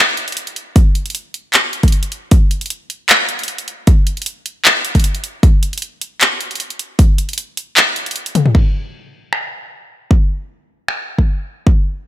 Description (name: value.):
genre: future bass.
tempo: 154 BPM.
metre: 4/4.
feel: swing 53% on 16ths, half-time.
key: none.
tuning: none.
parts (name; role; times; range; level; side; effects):
pop drum kit; drums; 0.2-11.0 s; crash cymbal, finger snaps, handclaps, hi-hat, toms; -14 LUFS; left 1 dB; low-pass filter on snare, low-pass filter on hats, low-pass filter on cymbals, low-pass filter on toms.
electronic kick drum; drums; 0.8-11.7 s; none; -11 LUFS; equal; none.
room: little or no reverb.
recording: none.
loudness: -13 LUFS.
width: side -13 dB against mid.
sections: 0.0-8.5 A section; 8.5-12.1 B section.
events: drop 0.0-8.5; kick drops out 7.8-8.5; drum fill 8.4.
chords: none.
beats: 0.37 | 0.76 1.15 1.54 1.93 | 2.31 2.71 3.09 3.48 | 3.87 4.26 4.65 5.04 | 5.43 5.82 6.21 6.60 | 6.99 7.38 7.77 8.16 | 8.55 8.94 9.33 9.72 | 10.11 10.50 10.89 11.28 | 11.67.